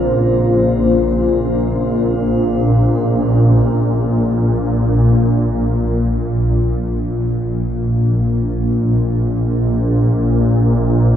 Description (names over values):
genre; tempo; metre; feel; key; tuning
dark ambient drone; free time; none; none; Bb minor; A4 = 439 Hz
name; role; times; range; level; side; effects
deep dark ambient pad; sustained chords; 0.0-3.5 s; Db4 to C5; -20 LUFS; left 2 dB; chorus, built-in reverb, shimmer reverb
swarming drone; drone; 0.0-11.2 s; Bb1 to Bb2; -14 LUFS; equal; built-in reverb
room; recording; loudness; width
wet cathedral reverb, RT60 5.7 s; dark, warm production; -13 LUFS; side -10 dB against mid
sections
0.0-3.5 A section; 3.5-11.2 B section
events
none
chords
0.0 Bbm; 3.5 N.C.